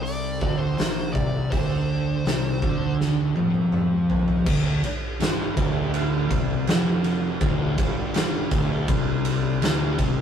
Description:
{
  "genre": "stoner and doom metal",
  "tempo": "82 BPM",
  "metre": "4/4",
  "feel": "straight",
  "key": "D minor",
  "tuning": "A4 = 440 Hz",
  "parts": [
    { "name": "fuzz lead guitar", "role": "melody", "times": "0.0-2.9 s", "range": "C5 to D5", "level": "-32 LUFS", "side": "left 2 dB", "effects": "distortion" },
    { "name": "thick fuzz guitar", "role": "riff", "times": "0.0-10.2 s", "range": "D2 to F3", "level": "-24 LUFS", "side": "equal", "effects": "distortion" },
    { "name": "fuzz picked electric bass", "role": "bass", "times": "0.0-10.2 s", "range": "D1 to F2", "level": "-32 LUFS", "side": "left 1 dB", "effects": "overdrive" },
    { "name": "oversized low-tuned drum kit", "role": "drums", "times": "0.1-10.2 s", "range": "crash cymbal, hi-hat, kick drum, ride cymbal, snare drum, toms", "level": "-24 LUFS", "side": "right 1 dB", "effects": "none" }
  ],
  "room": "light reverb",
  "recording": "rough rehearsal-room recording",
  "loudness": "-21 LUFS",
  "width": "side -8 dB against mid",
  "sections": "0.0-4.5 A section; 4.5-10.2 B section",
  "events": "drum fill 3.0-4.5",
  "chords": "0.0 Bbadd9; 4.5 Dm"
}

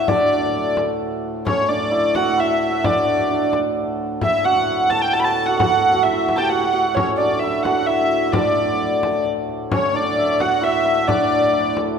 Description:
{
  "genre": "medieval dance",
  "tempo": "131 BPM",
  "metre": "3/4",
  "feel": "straight",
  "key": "D major",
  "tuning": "A4 = 442 Hz",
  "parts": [
    { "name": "dark hurdy-gurdy", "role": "melody", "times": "0.0-11.8 s", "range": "C#5 to B5", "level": "-19 LUFS", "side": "left 1 dB", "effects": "none" },
    { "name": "hammered dulcimer", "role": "second line", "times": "0.0-12.0 s", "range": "C#4 to A4", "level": "-21 LUFS", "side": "right 4 dB", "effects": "none" },
    { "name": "pedal harmonium", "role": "drone", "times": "0.0-12.0 s", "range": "D2 to A2", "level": "-29 LUFS", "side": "left 2 dB", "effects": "none" },
    { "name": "frame drum", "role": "percussion", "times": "0.1-12.0 s", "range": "none", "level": "-27 LUFS", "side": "left 3 dB", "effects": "none" },
    { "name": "clear shawm", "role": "second line", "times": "9.7-11.7 s", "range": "C#5 to F#5", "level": "-26 LUFS", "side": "left 4 dB", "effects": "none" }
  ],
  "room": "wet scoring stage reverb, RT60 1.8 s",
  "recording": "minimal, uncompressed stereo recording",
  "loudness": "-16 LUFS",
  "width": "side -6 dB against mid",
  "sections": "0.0-9.7 A section; 9.7-12.0 A section",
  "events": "none",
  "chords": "none"
}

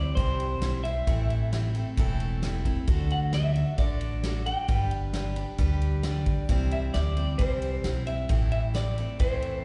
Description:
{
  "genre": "honky-tonk and classic country",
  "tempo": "133 BPM",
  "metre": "4/4",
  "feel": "straight",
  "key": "unclear",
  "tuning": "A4 = 440 Hz",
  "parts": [
    { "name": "electric guitar through a small old amp", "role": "melody", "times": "0.0-9.6 s", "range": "C5 to G5", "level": "-35 LUFS", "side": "equal", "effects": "plate reverb, slapback echo, tape echo" },
    { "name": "picked steel-string acoustic guitar", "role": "accompaniment", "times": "0.0-9.6 s", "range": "A2 to C5", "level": "-38 LUFS", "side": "equal", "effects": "plate reverb, slapback echo" },
    { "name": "upright bass", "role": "bass", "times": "0.0-9.6 s", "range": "E1 to E2", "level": "-30 LUFS", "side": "equal", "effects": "none" },
    { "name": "natural country drum kit", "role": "drums", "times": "0.2-9.5 s", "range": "kick drum, ride cymbal, snare drum", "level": "-31 LUFS", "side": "equal", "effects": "none" }
  ],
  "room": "light reverb",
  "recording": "live gig heard through the venue's PA, recital hall reverb, nothing above 10.9 kHz",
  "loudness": "-27 LUFS",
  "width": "mono",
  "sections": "0.0-9.6 A section",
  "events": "none",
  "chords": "0.0 C; 1.1 Am; 2.9 D; 4.7 G; 6.5 C; 8.3 Am"
}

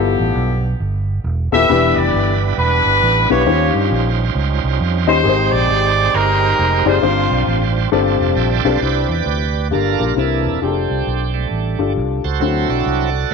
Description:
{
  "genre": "gospel",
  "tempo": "135 BPM",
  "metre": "4/4",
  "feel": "swing 62% on 8ths",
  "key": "unclear",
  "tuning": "A4 = 441 Hz",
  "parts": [
    { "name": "warm horn section", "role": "melody", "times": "0.0-7.7 s", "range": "B3 to E5", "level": "-17 LUFS", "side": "equal", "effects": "none" },
    { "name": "dark concert grand piano", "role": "accompaniment", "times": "0.0-13.1 s", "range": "G2 to Eb5", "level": "-18 LUFS", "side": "left 11 dB", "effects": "none" },
    { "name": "fingered electric bass", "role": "bass", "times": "0.0-13.3 s", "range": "Eb1 to G2", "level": "-19 LUFS", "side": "right 2 dB", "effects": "none" },
    { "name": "bright tonewheel organ", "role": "sustained chords", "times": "1.7-13.3 s", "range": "E3 to A5", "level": "-21 LUFS", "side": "right 12 dB", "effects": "slow rotary speaker, overdrive" }
  ],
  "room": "light reverb, studio reverb",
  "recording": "1960s-style stereo with parts hard left and right",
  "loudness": "-14 LUFS",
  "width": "side -5 dB against mid",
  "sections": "0.0-8.8 A section; 8.8-13.3 B section",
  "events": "tonewheel organ fill 8.1-8.8; tonewheel organ solo 8.8-13.3",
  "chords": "0.0 G13; 1.7 Em7; 3.5 Eb13; 5.2 Abmaj7; 7.0 G7sus4; 7.9 G9sus4; 8.8 Cmaj9; 9.7 Gm7; 10.2 C9; 10.6 F69; 12.4 D7"
}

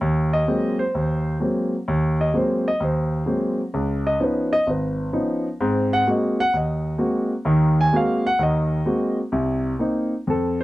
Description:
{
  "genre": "solo jazz",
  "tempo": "129 BPM",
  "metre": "4/4",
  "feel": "swing 67% on 8ths",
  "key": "Ab mixolydian",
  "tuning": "A4 = 440 Hz",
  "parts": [
    { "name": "warm grand piano", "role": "solo", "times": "0.0-10.6 s", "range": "Ab1 to Ab5", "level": "-19 LUFS", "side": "equal", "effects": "none" }
  ],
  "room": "light reverb",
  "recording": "dry, close 1970s-style studio recording",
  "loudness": "-19 LUFS",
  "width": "side -17 dB against mid",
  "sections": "0.0-10.6 A section",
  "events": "grand piano solo 0.0-10.6",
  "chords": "0.0 Ab9; 3.7 Db9; 5.6 Ab9; 9.3 Cm7"
}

